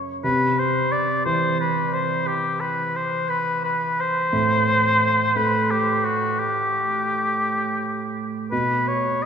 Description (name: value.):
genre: classical, impressionist duo for oboe and grand piano.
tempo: 58 BPM (dotted quarters).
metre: 12/8.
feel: rubato.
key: unclear.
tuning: A4 = 438 Hz.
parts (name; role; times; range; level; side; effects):
dark baby grand piano; accompaniment; 0.0-9.3 s; F#2 to A3; -26 LUFS; right 3 dB; none.
warm oboe; melody; 0.2-9.3 s; F#4 to D5; -21 LUFS; left 2 dB; none.
room: wet cathedral reverb, RT60 4.9 s.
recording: recorded in a church or concert hall.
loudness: -19 LUFS.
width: side -7 dB against mid.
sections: 0.0-9.3 A section.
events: none.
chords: 0.2 C; 4.3 N.C..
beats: | 0.24 1.25 2.27 3.29 | 4.33 5.36 6.41 7.46 | 8.52.